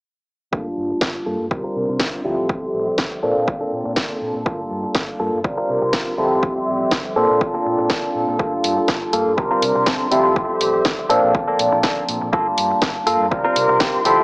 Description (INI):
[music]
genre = filtered disco house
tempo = 122 BPM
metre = 4/4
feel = swing 54% on 16ths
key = G dorian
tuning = A4 = 436 Hz
[part]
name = barky tine electric piano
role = accompaniment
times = 0.5-14.2 s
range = F3 to A5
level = -20 LUFS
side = equal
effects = phaser, sidechain pumping, low-pass filter
[part]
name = direct-recorded clean electric guitar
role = riff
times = 0.5-14.2 s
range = Bb3 to Bb4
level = -23 LUFS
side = equal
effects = sidechain pumping, low-pass filter
[part]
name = overdriven fingered electric bass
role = bass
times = 0.5-14.2 s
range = G1 to C3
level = -35 LUFS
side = equal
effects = sidechain pumping, low-pass filter
[part]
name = electronic kick drum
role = drums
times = 0.5-13.9 s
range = none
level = -24 LUFS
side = equal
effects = none
[part]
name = house drum kit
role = drums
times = 1.0-14.2 s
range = hi-hat, snare drum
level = -22 LUFS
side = equal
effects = sidechain pumping on hats
[part]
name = muted studio string section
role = sustained chords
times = 1.5-14.2 s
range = G4 to C6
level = -24 LUFS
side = equal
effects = vintage 12-bit sampler grit, sidechain pumping, low-pass filter
[sound]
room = moderate plate reverb, RT60 1.1 s, digital ambience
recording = small speaker sound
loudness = -17 LUFS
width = side -30 dB against mid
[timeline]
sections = 0.5-14.2 A section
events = filter sweep 0.5-14.2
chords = 0.5 Gm9; 1.5 C7sus4; 2.2 Dm11; 3.2 Bbmaj7; 4.5 Gm9; 5.4 C7sus4; 6.2 Dm11; 7.2 Bbmaj7; 8.4 Gm9; 9.4 C7sus4; 10.1 Dm11; 11.1 Bbmaj7; 12.3 Gm9; 13.3 C7sus4